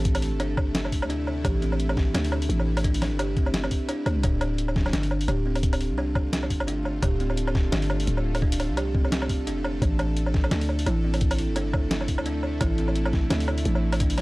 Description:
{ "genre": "half-time drum and bass", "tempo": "172 BPM", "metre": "4/4", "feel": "swing 57% on 16ths, half-time", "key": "D dorian", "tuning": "A4 = 440 Hz", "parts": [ { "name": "bowed-like drone", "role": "sustained chords", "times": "0.0-14.2 s", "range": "C3 to B4", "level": "-37 LUFS", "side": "right 1 dB", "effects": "built-in reverb, vintage 12-bit sampler grit, sidechain pumping" }, { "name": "buzzing kalimba", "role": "arpeggios", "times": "0.0-14.2 s", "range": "A3 to G4", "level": "-30 LUFS", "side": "equal", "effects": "vintage 12-bit sampler grit, tape echo" }, { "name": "growling 808-style bass", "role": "bass", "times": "0.0-14.2 s", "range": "D1 to D2", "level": "-26 LUFS", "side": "equal", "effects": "none" }, { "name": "boom bap sampler-style drum kit", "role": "drums", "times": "0.1-14.2 s", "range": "hi-hat, snare drum, woodblock", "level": "-29 LUFS", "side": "equal", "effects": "none" }, { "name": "electronic kick drum", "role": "drums", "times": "0.1-14.1 s", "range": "none", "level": "-25 LUFS", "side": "equal", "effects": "none" } ], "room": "digital ambience", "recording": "dry, gritty hardware recording", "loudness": "-22 LUFS", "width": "side -21 dB against mid", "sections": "0.0-14.2 A section", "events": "none", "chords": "0.0 Am; 4.2 Dm; 9.8 Am", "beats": "| 0.05 0.40 0.75 1.10 | 1.45 1.80 2.14 2.49 | 2.84 3.19 3.54 3.89 | 4.24 4.59 4.93 5.28 | 5.63 5.98 6.33 6.68 | 7.03 7.38 7.73 8.07 | 8.42 8.77 9.12 9.47 | 9.82 10.17 10.52 10.87 | 11.21 11.56 11.91 12.26 | 12.61 12.96 13.31 13.66 | 14.01" }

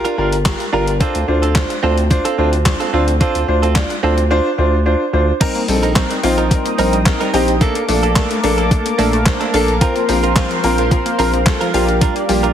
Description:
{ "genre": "dance-pop", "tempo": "109 BPM", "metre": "4/4", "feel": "straight", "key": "unclear", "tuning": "A4 = 440 Hz", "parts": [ { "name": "clear baby grand piano", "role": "accompaniment", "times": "0.0-12.5 s", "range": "Bb3 to D5", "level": "-18 LUFS", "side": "equal", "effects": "sidechain pumping" }, { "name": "direct-recorded clean electric guitar", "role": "riff", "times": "0.0-12.5 s", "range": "Bb3 to Bb4", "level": "-22 LUFS", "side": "right 7 dB", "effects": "lush chorus" }, { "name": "gated 80s digital drum machine", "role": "drums", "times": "0.1-12.5 s", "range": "crash cymbal, handclaps, hi-hat, kick drum, snare drum", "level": "-18 LUFS", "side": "equal", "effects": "gated reverb, gated reverb snare, overdrive" }, { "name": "round analog bass", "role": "bass", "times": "0.2-12.5 s", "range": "G1 to D2", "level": "-18 LUFS", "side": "equal", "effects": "sidechain pumping" }, { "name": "group handclap", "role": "percussion", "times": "0.5-3.9 s", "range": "none", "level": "barely audible", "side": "none", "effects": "none" }, { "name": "warm analog pad", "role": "sustained chords", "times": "5.4-12.5 s", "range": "G4 to Eb6", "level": "-22 LUFS", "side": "left 2 dB", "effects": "chorus, sidechain pumping" }, { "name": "analog pluck", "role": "arpeggios", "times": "5.4-12.4 s", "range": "F3 to F5", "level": "-24 LUFS", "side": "left 2 dB", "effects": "chorus, sidechain pumping, ping-pong delay" } ], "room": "light reverb", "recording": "heavily compressed radio sound, multiband compression", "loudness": "-13 LUFS", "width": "side -9 dB against mid", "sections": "0.0-5.4 A section; 5.4-12.5 B section", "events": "silent gap 4.3-5.4", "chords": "0.0 Gm7; 1.0 Dm7; 5.4 Cm7/Bb; 7.6 Bbmaj7; 9.8 Fsus4/Bb; 11.7 Gm7/Bb", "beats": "0.46 | 1.01 1.56 2.11 2.66 | 3.21 3.76 4.31 4.86 | 5.41 5.96 6.51 7.06 | 7.61 8.16 8.71 9.26 | 9.81 10.36 10.91 11.46 | 12.02" }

